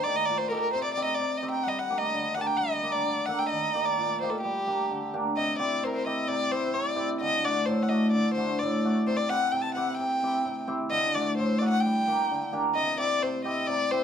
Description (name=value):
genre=klezmer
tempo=130 BPM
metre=2/4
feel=straight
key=unclear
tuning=A4 = 440 Hz
part: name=warm violin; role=melody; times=0.0-14.0 s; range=G4 to A5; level=-28 LUFS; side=left 3 dB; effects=none
part: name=cimbalom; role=accompaniment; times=0.0-14.0 s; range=A2 to A4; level=-28 LUFS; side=right 2 dB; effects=none
room=moderate studio reverb, RT60 0.6 s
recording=none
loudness=-25 LUFS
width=side -8 dB against mid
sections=0.0-5.4 A section; 5.4-12.8 B section; 12.8-14.0 B section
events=none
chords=0.0 Eb; 0.7 Cm; 1.7 Gm; 3.5 Eb; 4.4 Gm; 5.4 C; 7.2 D; 9.1 C; 10.9 D; 11.8 Gm; 12.8 C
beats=0.27 | 0.73 1.20 | 1.66 2.13 | 2.59 3.06 | 3.52 3.98 | 4.45 4.91 | 5.37 5.83 | 6.30 6.76 | 7.22 7.68 | 8.14 8.61 | 9.07 9.53 | 9.99 10.45 | 10.92 11.38 | 11.84 12.30 | 12.77 13.23 | 13.69